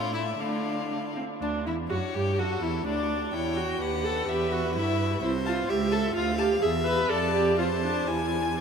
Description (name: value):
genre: quick classical-period movement for string quartet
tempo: 126 BPM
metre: 2/4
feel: rubato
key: unclear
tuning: A4 = 441 Hz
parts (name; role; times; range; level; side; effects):
- clear violin; melody; 0.0-8.6 s; D4 to A5; -34 LUFS; left 8 dB; none
- clear violin; second line; 0.0-8.6 s; D4 to G#5; -32 LUFS; left 3 dB; none
- rich viola; accompaniment; 0.0-8.6 s; A3 to B4; -28 LUFS; right 1 dB; none
- warm cello; bass; 0.0-8.6 s; C2 to D3; -31 LUFS; right 5 dB; none
room: wet huge ambient reverb, RT60 8.0 s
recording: in a vast, echoing space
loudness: -25 LUFS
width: side -6 dB against mid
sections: 0.0-1.4 A section; 1.4-8.6 B section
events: none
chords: 0.4 Dm; 1.4 Dsus2; 1.9 F#5; 2.4 D; 3.3 Em; 3.8 B/D#; 4.3 Em; 5.2 N.C.; 5.7 A7/C#; 6.2 Dm; 6.6 E5; 7.1 F; 8.1 E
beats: | 0.40 0.91 | 1.42 1.90 | 2.38 2.86 | 3.33 3.81 | 4.28 4.75 | 5.22 5.69 | 6.16 6.62 | 7.10 7.58 | 8.08 8.58